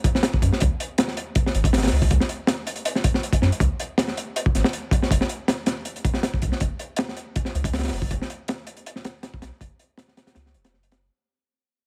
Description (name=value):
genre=drum and bass, jungle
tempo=160 BPM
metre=4/4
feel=straight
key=unclear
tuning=A4 = 440 Hz
part: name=crunchy breakbeat drum kit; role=drums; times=0.0-11.0 s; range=hi-hat, kick drum, snare drum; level=-24 LUFS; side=equal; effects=none
part: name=soft dub sub bass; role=bass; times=0.4-11.1 s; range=E1 to F#2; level=-25 LUFS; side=equal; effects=none
room=little or no reverb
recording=heavily compressed radio sound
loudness=-23 LUFS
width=mono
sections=0.0-11.1 A section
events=drop 0.0-11.1; fade-out 5.1-11.1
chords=none